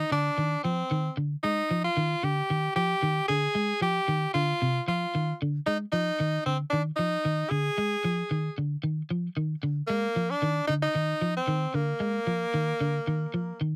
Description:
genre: afrobeat.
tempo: 113 BPM.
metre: 4/4.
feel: swing 55% on 16ths.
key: unclear.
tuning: A4 = 438 Hz.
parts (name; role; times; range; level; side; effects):
edgy tenor saxophone; melody; 0.0-13.6 s; Bb3 to Ab4; -30 LUFS; equal; none.
electric guitar at the edge of break-up; arpeggios; 0.0-13.8 s; C3 to Ab3; -31 LUFS; equal; analog chorus.
room: light reverb.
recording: dry, close 1970s-style studio recording.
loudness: -28 LUFS.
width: mono.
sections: 0.0-13.8 A section.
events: none.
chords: 0.0 Dm; 3.5 Abmaj7; 5.7 Fm13/D.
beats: 0.38 0.91 | 1.43 1.96 2.49 3.02 | 3.55 4.07 4.60 5.13 | 5.66 6.19 6.72 7.25 | 7.78 8.30 8.83 9.36 | 9.89 10.42 10.95 11.48 | 12.02 12.54 13.08 13.61.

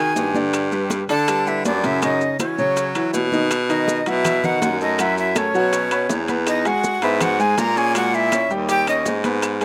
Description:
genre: Afro-Cuban jazz.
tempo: 162 BPM.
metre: 4/4.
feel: straight.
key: B major from 3.5 s.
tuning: A4 = 440 Hz.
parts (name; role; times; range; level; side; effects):
breathy bright jazz flute; melody; 0.0-9.6 s; C#5 to A#5; -24 LUFS; equal; none.
bright tenor saxophone; second line; 0.0-9.6 s; C#4 to A#4; -32 LUFS; equal; none.
warm baby grand piano; accompaniment; 0.0-9.6 s; C#3 to C#6; -26 LUFS; equal; none.
breathy baritone saxophone; bass; 0.0-9.6 s; D#2 to F#3; -25 LUFS; equal; none.
bongos; percussion; 0.2-9.6 s; none; -37 LUFS; equal; none.
congas; percussion; 0.2-9.6 s; none; -33 LUFS; equal; none.
maracas; percussion; 0.2-9.6 s; none; -35 LUFS; equal; none.
timbales; percussion; 0.2-9.6 s; none; -33 LUFS; equal; none.
claves; percussion; 0.5-9.6 s; none; -35 LUFS; equal; slapback echo.
room: little or no reverb.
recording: recorded outdoors, with no room sound.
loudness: -20 LUFS.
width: mono.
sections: 0.0-3.5 A section; 3.5-9.6 B section.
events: none.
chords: 0.0 Ab7(no3); 0.5 Gadd9; 2.0 F#5; 3.5 B; 5.0 F#m; 5.7 B5; 6.5 Eadd9; 8.0 A#m7b5; 8.7 D#7b13.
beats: 0.16 | 0.53 0.91 1.28 1.65 | 2.02 2.40 2.77 3.14 | 3.51 3.88 4.25 4.62 | 4.99 5.36 5.73 6.10 | 6.47 6.84 7.21 7.58 | 7.95 8.32 8.69 9.06 | 9.43.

